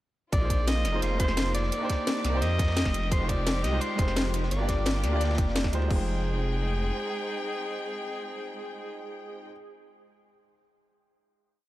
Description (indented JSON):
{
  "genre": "liquid drum and bass",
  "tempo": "172 BPM",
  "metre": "4/4",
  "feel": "straight",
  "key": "F dorian",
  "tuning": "A4 = 439 Hz",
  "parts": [
    { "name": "breathy alto saxophone", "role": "melody", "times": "0.3-9.5 s", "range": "Ab4 to Eb5", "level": "-33 LUFS", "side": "equal", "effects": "digital delay" },
    { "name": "rich studio string section", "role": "sustained chords", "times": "0.3-9.5 s", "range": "Eb3 to D6", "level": "-38 LUFS", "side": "left 2 dB", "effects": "sidechain pumping" },
    { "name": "dark detuned saw bass", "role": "bass", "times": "0.3-6.9 s", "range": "F1 to F2", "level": "-28 LUFS", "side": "equal", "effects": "none" },
    { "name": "crunchy breakbeat drum kit", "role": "drums", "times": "0.3-5.9 s", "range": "ride cymbal, snare drum", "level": "-42 LUFS", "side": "equal", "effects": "high-pass filter on cymbals, high-pass filter on snare, high-pass filter on room" },
    { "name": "drum and bass drum kit", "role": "drums", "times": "0.3-6.0 s", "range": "crash cymbal, hi-hat, snare drum", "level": "-32 LUFS", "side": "left 1 dB", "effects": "overdrive" },
    { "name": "electronic kick drum", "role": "drums", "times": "0.3-6.0 s", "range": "none", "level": "-27 LUFS", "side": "equal", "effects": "overdrive" },
    { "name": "warm concert grand piano", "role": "accompaniment", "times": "0.4-9.5 s", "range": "Ab3 to G5", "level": "-34 LUFS", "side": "right 1 dB", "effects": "dub echo" }
  ],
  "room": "small room reverb",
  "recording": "dark, warm production",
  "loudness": "-25 LUFS",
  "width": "side -15 dB against mid",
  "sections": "0.3-5.9 drop; 5.9-8.7 final chord",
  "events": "drop 0.3-5.9",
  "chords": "0.3 Bb9sus4; 1.7 Cm9; 2.9 Fm9; 4.5 Gm7; 5.9 Fm9"
}